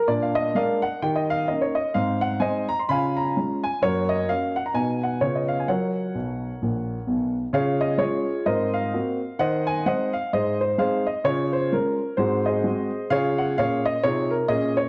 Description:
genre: jazz, stride piano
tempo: 129 BPM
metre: 4/4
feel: swing 60% on 8ths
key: F# major, Db major from 7.5 s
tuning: A4 = 440 Hz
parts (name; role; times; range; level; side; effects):
- warm grand piano; solo; 0.0-14.9 s; A#1 to B#5; -24 LUFS; equal; none
room: wet spring reverb, RT60 1.8 s, studio reverb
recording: none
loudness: -24 LUFS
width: mono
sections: 0.0-7.5 A section; 7.5-14.9 B section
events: grand piano fill 6.2-7.5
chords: 0.1 A#7; 1.0 D#7; 2.0 G#; 2.9 C#; 3.8 F#; 4.8 B; 5.2 C#7; 5.7 F#; 7.5 Db; 8.5 Ab9; 9.4 Ab/Eb; 11.3 Db; 12.2 Ab7; 13.1 Db

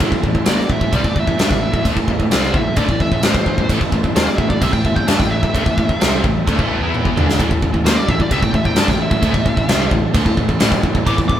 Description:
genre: hard rock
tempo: 130 BPM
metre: 4/4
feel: straight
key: A minor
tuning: A4 = 440 Hz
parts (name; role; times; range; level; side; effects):
- overdriven tonewheel organ; sustained chords; 0.0-11.4 s; A3 to A4; -32 LUFS; equal; none
- biting overdriven guitar; riff; 0.0-11.4 s; A2 to E4; -24 LUFS; right 4 dB; none
- crunchy overdriven guitar; riff; 0.0-11.4 s; A2 to E4; -25 LUFS; equal; none
- overdriven electric guitar; riff; 0.0-11.4 s; A2 to E4; -25 LUFS; left 4 dB; tremolo
- picked electric bass; bass; 0.0-11.4 s; A1 to G2; -24 LUFS; equal; none
- huge arena drum kit; drums; 0.0-11.4 s; crash cymbal, kick drum, snare drum, toms; -16 LUFS; equal; none
- bluesy overdriven lead guitar; melody; 0.5-11.4 s; C5 to D6; -23 LUFS; equal; distortion
room: light reverb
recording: band playing live in one room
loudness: -14 LUFS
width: side -10 dB against mid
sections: 0.0-11.4 A section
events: lead electric guitar solo 0.0-11.4; drum fill 6.9-7.4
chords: 0.0 Am

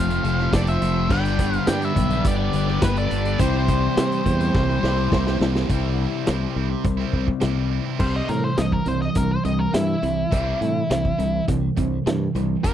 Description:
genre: classic rock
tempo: 104 BPM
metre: 4/4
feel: straight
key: C major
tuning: A4 = 439 Hz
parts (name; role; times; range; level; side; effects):
- octave-fuzz lead guitar; melody; 0.0-12.7 s; E4 to G5; -26 LUFS; left 1 dB; distortion, slapback echo
- octave-fuzz lead guitar; second line; 0.0-5.4 s; G4 to D5; -34 LUFS; right 3 dB; distortion
- crunchy overdriven guitar; riff; 0.0-12.7 s; F2 to E4; -28 LUFS; left 11 dB; phaser
- overdriven electric guitar; riff; 0.0-12.7 s; G2 to C5; -28 LUFS; right 11 dB; none
- overdriven semi-hollow guitar; riff; 0.0-5.7 s; F2 to C4; -27 LUFS; left 1 dB; phaser
- modern bright fingered electric bass; bass; 0.0-12.7 s; F1 to C3; -24 LUFS; equal; none
- vintage drum kit; drums; 0.1-12.7 s; crash cymbal, hi-hat, kick drum, snare drum; -24 LUFS; equal; none
room: little or no reverb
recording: dry, close 1970s-style studio recording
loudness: -19 LUFS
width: side -10 dB against mid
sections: 0.0-5.7 A section; 5.7-8.0 B section; 8.0-12.7 C section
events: drum fill 4.5-5.7; lead electric guitar solo 8.0-12.7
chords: 0.0 F; 1.1 G; 3.4 C

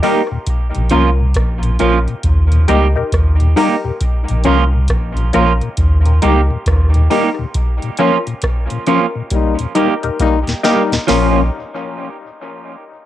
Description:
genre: dub reggae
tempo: 68 BPM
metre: 4/4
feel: swing 63% on 16ths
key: Bb dorian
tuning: A4 = 440 Hz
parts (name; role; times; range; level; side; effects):
- electric guitar at the edge of break-up; accompaniment; 0.0-11.4 s; F3 to G4; -19 LUFS; right 7 dB; tremolo, cassette tape, dub echo
- mellow tonewheel organ; accompaniment; 0.0-11.4 s; Eb2 to Eb4; -23 LUFS; left 5 dB; chorus vibrato, cassette tape, dub echo
- filtered dub chord stab; stabs; 0.0-11.4 s; Db4 to Bb4; -22 LUFS; left 6 dB; phaser, cassette tape, dub echo
- booming analog drum machine; drums; 0.0-11.3 s; hi-hat, kick drum, rim click, snare drum; -18 LUFS; equal; none
- warm sub bass; bass; 0.8-11.5 s; Bb1 to Eb2; -13 LUFS; equal; tube saturation
- warm trombone section; second line; 9.3-11.4 s; Bb2 to Eb4; -20 LUFS; left 6 dB; cassette tape, dub echo
room: light reverb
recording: home recording on cassette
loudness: -12 LUFS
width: side -13 dB against mid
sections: 0.0-11.1 A section; 11.1-13.1 B section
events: break 7.5-11.1; band accent 7.5-11.1; drum fill 9.3-11.1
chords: 0.5 Bbm; 2.2 Eb; 4.0 Bbm; 5.8 Eb; 7.5 Bbm; 9.3 Eb; 11.1 Bbm

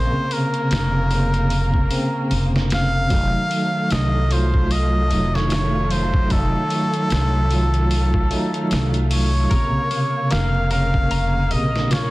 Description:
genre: trip hop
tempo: 75 BPM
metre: 4/4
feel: swing 58% on 16ths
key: Bb harmonic minor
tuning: A4 = 440 Hz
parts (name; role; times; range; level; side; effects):
- trumpet with cup mute; melody; 0.0-12.1 s; A4 to F5; -24 LUFS; equal; vintage 12-bit sampler grit, tape echo
- tine electric piano; accompaniment; 0.0-12.1 s; C3 to F4; -24 LUFS; equal; tremolo
- dark studio string section; sustained chords; 0.0-12.1 s; Eb3 to Bb3; -29 LUFS; right 1 dB; none
- upright bass; bass; 0.0-12.1 s; F1 to C2; -20 LUFS; equal; none
- flickering grainy texture; texture; 0.0-12.1 s; F5; -38 LUFS; right 2 dB; none
- trip hop sampler-style drum kit; drums; 0.3-12.1 s; hi-hat, kick drum, snare drum; -24 LUFS; equal; none
- semi-hollow electric guitar; arpeggios; 9.5-12.1 s; Bb3 to Bb5; -32 LUFS; left 3 dB; analog chorus, tape echo
- tabla; percussion; 10.3-12.1 s; none; -34 LUFS; right 1 dB; none
room: studio ambience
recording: dense, heavily limited modern master, vinyl crackle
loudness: -17 LUFS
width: side -19 dB against mid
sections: 0.0-12.1 A section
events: none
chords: 0.0 Bbmadd9; 3.1 F7b9; 9.5 Bbmadd9

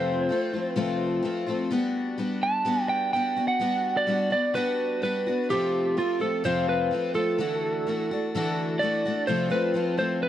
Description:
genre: rock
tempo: 127 BPM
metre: 4/4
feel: straight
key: G major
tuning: A4 = 440 Hz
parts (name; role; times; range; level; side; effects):
- lightly driven lead guitar; melody; 0.0-10.3 s; F4 to A5; -26 LUFS; right 2 dB; analog delay
- picked twelve-string acoustic guitar; accompaniment; 0.0-10.3 s; F2 to F#4; -27 LUFS; left 3 dB; none
room: light reverb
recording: dark, warm production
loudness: -24 LUFS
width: side -11 dB against mid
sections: 0.0-9.3 A section; 9.3-10.3 B section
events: none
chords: 0.0 F; 1.7 Gmaj7; 5.5 F; 7.4 Dadd9; 9.3 F

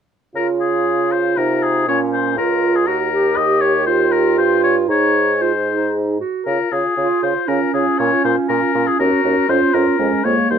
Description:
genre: quick classical-period movement for wind quintet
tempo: 118 BPM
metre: 3/4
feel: rubato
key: Db major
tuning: A4 = 441 Hz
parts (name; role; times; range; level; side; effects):
- warm bassoon; bass; 0.3-10.6 s; Db2 to Db3; -22 LUFS; right 2 dB; none
- warm oboe; second line; 0.4-10.6 s; Ab4 to Eb5; -18 LUFS; left 6 dB; none
- bright clarinet; accompaniment; 0.4-10.6 s; Bb3 to G4; -19 LUFS; right 7 dB; none
- mellow French horn; accompaniment; 0.4-10.6 s; G3 to Ab4; -22 LUFS; left 2 dB; none
room: light reverb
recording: none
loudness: -14 LUFS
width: side -8 dB against mid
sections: 0.3-10.6 A section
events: none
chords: 0.3 Db; 1.9 Bbm; 2.9 Ebm; 3.4 Eb; 4.9 Ab; 6.5 Db; 8.0 Bbm; 9.0 Ebm7; 9.5 Db/F; 10.0 Bbm7/F

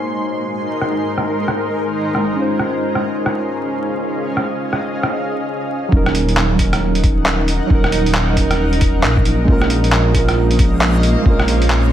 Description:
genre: future garage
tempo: 135 BPM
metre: 4/4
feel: swing 62% on 16ths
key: Eb dorian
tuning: A4 = 441 Hz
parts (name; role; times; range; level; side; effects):
- muted felt-like synth keys; accompaniment; 0.0-11.9 s; Gb3 to C5; -21 LUFS; right 3 dB; chorus, sidechain pumping, ping-pong delay
- granular cloud pad; sustained chords; 0.0-11.9 s; Ab3 to C6; -22 LUFS; left 1 dB; built-in reverb, sidechain pumping
- backwards swelling texture; texture; 0.0-11.9 s; Eb5 to Ab5; -32 LUFS; left 1 dB; built-in reverb
- lo-fi sampler-style drum kit; drums; 0.8-11.8 s; handclaps, hi-hat, rim click; -20 LUFS; equal; low-pass filter on snare, low-pass filter on hats, low-pass filter on room
- dark detuned saw bass; bass; 5.9-11.9 s; Eb1 to Bb1; -17 LUFS; equal; sidechain pumping
- electronic kick drum; drums; 5.9-11.4 s; none; -15 LUFS; equal; none
room: light reverb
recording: vinyl crackle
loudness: -14 LUFS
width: side -11 dB against mid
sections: 0.0-5.9 A section; 5.9-11.9 B section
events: stop 5.5-5.9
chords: 0.0 Ab7; 2.4 Dbmaj7; 5.9 Ebm7; 9.5 Bbm7

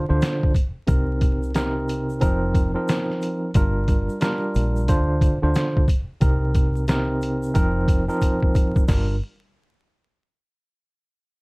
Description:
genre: hip hop, boom-bap hip-hop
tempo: 90 BPM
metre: 4/4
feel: swing 62% on 16ths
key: G minor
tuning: A4 = 441 Hz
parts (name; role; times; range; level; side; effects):
- tine electric piano; accompaniment; 0.0-9.1 s; C3 to C5; -23 LUFS; right 1 dB; fast tremolo, cassette tape, high-pass filter, low-pass filter
- deep dub fingered electric bass; bass; 0.1-9.2 s; F1 to D2; -24 LUFS; equal; none
- trip hop sampler-style drum kit; drums; 0.2-9.1 s; hi-hat, kick drum, snare drum; -20 LUFS; equal; none
- egg shaker; percussion; 0.2-9.2 s; none; -50 LUFS; left 6 dB; none
room: light reverb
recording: dark, warm production, vinyl crackle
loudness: -19 LUFS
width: side -29 dB against mid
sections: 0.0-8.9 A section; 8.9-11.4 B section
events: drum fill 8.2-8.9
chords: 0.0 Dm7; 0.9 Cm7; 2.2 F7sus4; 3.5 Gm7; 4.9 Dm7; 6.2 Cm7; 7.5 F7sus4; 8.9 Gm7

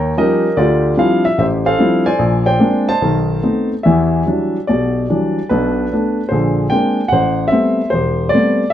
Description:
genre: solo jazz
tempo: 148 BPM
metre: 4/4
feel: swing 66% on 8ths, rubato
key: E minor from 3.9 s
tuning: A4 = 440 Hz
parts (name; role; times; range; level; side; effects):
- warm grand piano; solo; 0.0-8.7 s; E1 to A#5; -13 LUFS; equal; none
room: moderate studio reverb, RT60 0.6 s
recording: dark, warm production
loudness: -13 LUFS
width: side -11 dB against mid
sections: 0.0-3.9 A section; 3.9-8.7 B section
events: none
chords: 0.0 D#9; 0.6 Dm11; 2.2 Bb9; 3.0 B7b9; 3.9 Em9; 5.5 Bm7; 6.3 A#9; 7.1 Am9

